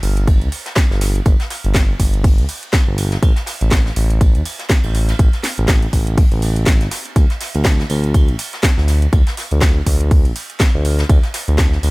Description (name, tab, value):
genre	deep house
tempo	122 BPM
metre	4/4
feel	swing 57% on 16ths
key	unclear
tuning	A4 = 440 Hz
part	smooth synth bass	bass	0.0-11.9 s	G1 to E2	-16 LUFS	equal	sidechain pumping
part	house drum kit	drums	0.0-11.9 s	hi-hat, snare drum	-23 LUFS	equal	none
part	jazz brush drum kit	drums	0.0-11.9 s	hi-hat, ride cymbal, snare drum	-28 LUFS	right 1 dB	sidechain pumping on cymbals, high-pass filter on cymbals, sidechain pumping on hats, high-pass filter on hats, high-pass filter on snare, high-pass filter on room
part	electronic kick drum	drums	0.3-11.7 s	none	-13 LUFS	equal	none
room	studio reverb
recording	none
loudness	-13 LUFS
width	side -24 dB against mid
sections	0.0-11.9 A section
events	none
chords	none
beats	0.28 0.77 | 1.26 1.75 2.24 2.73 | 3.23 3.72 4.21 4.70 | 5.19 5.68 6.18 6.67 | 7.16 7.65 8.14 8.63 | 9.13 9.62 10.11 10.60 | 11.09 11.59